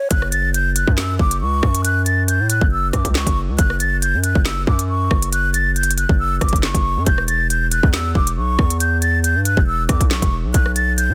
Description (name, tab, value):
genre	hip hop, drill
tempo	138 BPM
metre	4/4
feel	half-time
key	F# phrygian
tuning	A4 = 440 Hz
part	breathy mellow concert flute	melody	0.0-11.1 s	C#6 to A6	-23 LUFS	equal	delay
part	distorted 808-style bass	bass	0.1-11.1 s	E1 to B2	-22 LUFS	equal	distortion
part	drill drum kit	drums	0.1-11.1 s	handclaps, hi-hat, kick drum, rim click, snare drum	-20 LUFS	equal	none
room	digital ambience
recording	dense, heavily limited modern master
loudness	-18 LUFS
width	mono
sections	0.1-11.1 A section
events	none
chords	0.1 F#5; 7.1 Em; 10.5 B7(no3)